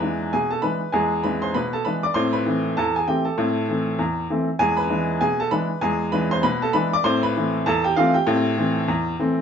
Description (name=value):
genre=ragtime piano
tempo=98 BPM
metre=2/4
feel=swing 59% on 16ths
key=unclear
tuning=A4 = 440 Hz
part: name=clear upright piano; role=solo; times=0.0-9.4 s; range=E2 to D6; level=-19 LUFS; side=equal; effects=none
room=wet studio reverb, RT60 0.6 s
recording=heard from further back in the room, nothing above 7.6 kHz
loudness=-19 LUFS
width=side -7 dB against mid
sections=0.0-9.4 A section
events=none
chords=0.0 E7; 2.2 Am; 4.6 E7; 7.0 Am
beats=0.33 | 0.94 1.55 | 2.16 2.77 | 3.39 4.00 | 4.61 5.22 | 5.83 6.44 | 7.05 7.66 | 8.27 8.88